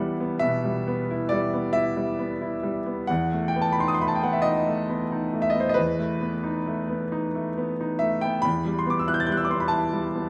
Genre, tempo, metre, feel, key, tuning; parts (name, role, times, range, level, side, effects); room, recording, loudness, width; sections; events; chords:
classical, romantic nocturne for solo piano; 45 BPM (dotted quarters); 12/8; rubato; E minor; A4 = 440 Hz
clear grand piano; solo; 0.0-10.3 s; E2 to A6; -25 LUFS; equal
moderate recital hall reverb, RT60 1.7 s; -25 LUFS; mono
0.0-10.3 A section
0.0 Em; 3.1 B7/E; 8.4 Em